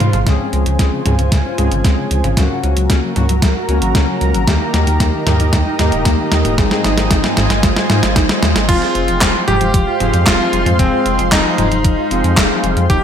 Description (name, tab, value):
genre	synthwave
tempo	114 BPM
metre	4/4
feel	straight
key	F minor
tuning	A4 = 439 Hz
part	bright electric grand piano	melody	0.0-0.2, 8.7-13.0 s	C4 to G4	-18 LUFS	equal	tape echo
part	lush unison pad	sustained chords	0.0-13.0 s	Ab3 to C6	-22 LUFS	right 1 dB	chorus, sidechain pumping
part	round analog bass	bass	0.0-13.0 s	Eb1 to Ab2	-17 LUFS	equal	none
part	clean 12-bit digital drum machine	drums	0.0-13.0 s	crash cymbal, handclaps, hi-hat, snare drum, toms	-17 LUFS	equal	gated reverb
part	mellow electric guitar	riff	0.3-13.0 s	Db3 to Ab4	-23 LUFS	left 1 dB	wide subtle chorus, low-pass filter, tape echo
part	analog synth brass	stabs	0.3-13.0 s	Ab2 to Ab4	-21 LUFS	left 3 dB	chorus, tape echo
part	electronic kick drum	drums	0.3-13.0 s	none	-16 LUFS	equal	none
room	light reverb, digital ambience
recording	none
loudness	-12 LUFS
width	side -8 dB against mid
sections	0.3-8.7 A section; 8.7-13.0 B section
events	drum fill 0.0, 0.3-8.7; filter sweep on clean electric guitar 0.3-8.7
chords	0.3 Dbmaj7; 2.4 Gb/Db; 4.5 Eb; 6.6 Ab6; 8.7 Fm